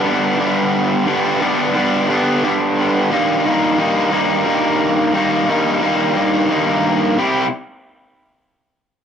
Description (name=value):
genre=rock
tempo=59 BPM (dotted quarters)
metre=6/8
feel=straight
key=unclear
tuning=A4 = 440 Hz
part: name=raw garage guitar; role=solo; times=0.0-7.5 s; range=G2 to G4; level=-14 LUFS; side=equal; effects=overdrive, cassette tape
room=light reverb, digital ambience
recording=home recording on cassette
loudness=-14 LUFS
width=side -8 dB against mid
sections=0.0-7.2 A section; 7.2-9.0 B section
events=none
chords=0.0 G; 3.1 Eb/G; 7.2 C